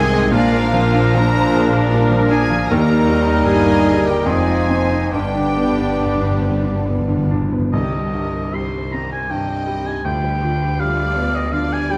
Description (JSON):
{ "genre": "classical, romantic movement for piano and orchestra", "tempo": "67-82 BPM", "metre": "3/4", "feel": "rubato", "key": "C minor", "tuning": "A4 = 440 Hz", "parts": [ { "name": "clear concert grand piano", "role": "melody", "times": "0.0-12.0 s", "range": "C2 to C5", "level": "-22 LUFS", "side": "equal", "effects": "none" }, { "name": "rich studio violin section", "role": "melody", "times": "0.0-12.0 s", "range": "B4 to Bb5", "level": "-33 LUFS", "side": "equal", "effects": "none" }, { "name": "bright flute section", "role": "second line", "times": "0.0-6.8 s", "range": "F5 to Bb5", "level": "-30 LUFS", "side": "equal", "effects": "none" }, { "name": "clear oboe", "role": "second line", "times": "0.0-12.0 s", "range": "F4 to C6", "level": "-27 LUFS", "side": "equal", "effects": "none" }, { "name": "warm clarinet", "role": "second line", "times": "0.0-7.4 s", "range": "C4 to Eb4", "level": "-28 LUFS", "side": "equal", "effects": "none" }, { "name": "warm studio violin section", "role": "second line", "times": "0.0-12.0 s", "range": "G4 to Eb5", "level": "-35 LUFS", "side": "equal", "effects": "none" }, { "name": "mellow bassoon", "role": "accompaniment", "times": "0.0-7.3 s", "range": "Eb3 to C4", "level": "-28 LUFS", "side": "equal", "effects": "none" }, { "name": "warm studio viola section", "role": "accompaniment", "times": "0.0-12.0 s", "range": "Eb3 to G4", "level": "-30 LUFS", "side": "equal", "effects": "none" }, { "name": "clear trombone section", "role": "sustained chords", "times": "0.0-7.3 s", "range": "C3 to Ab3", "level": "-32 LUFS", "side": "equal", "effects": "none" }, { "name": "mellow French horn section", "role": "sustained chords", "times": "0.0-7.4 s", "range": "Bb3 to F4", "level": "-29 LUFS", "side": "equal", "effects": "none" }, { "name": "warm trumpet section", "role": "stabs", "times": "0.0-7.3 s", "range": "Ab4 to Eb5", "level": "-27 LUFS", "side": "equal", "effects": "none" }, { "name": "clear chamber cello section", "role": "bass", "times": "0.0-12.0 s", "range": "C2 to C3", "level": "-29 LUFS", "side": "equal", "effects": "none" }, { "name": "warm chamber double bass section", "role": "bass", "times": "0.0-12.0 s", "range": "F1 to Eb2", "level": "-27 LUFS", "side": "equal", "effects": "none" }, { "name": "timpani", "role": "percussion", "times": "5.1-8.9 s", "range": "G2 to C3", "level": "-26 LUFS", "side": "equal", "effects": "none" } ], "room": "wet recital hall reverb, RT60 1.7 s", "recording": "none", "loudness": "-17 LUFS", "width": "mono", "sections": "0.0-7.7 A section; 7.7-12.0 B section", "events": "timpani fill 5.1-7.7", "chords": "0.3 Bb; 2.7 Eb; 4.3 Fm7; 5.1 G; 7.7 Cm; 10.1 G7/D", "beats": "| 0.32 1.15 1.91 | 2.69 3.46 4.27 | 5.12 5.99 6.85 | 7.72 8.53 9.31 | 10.05 10.79 11.53" }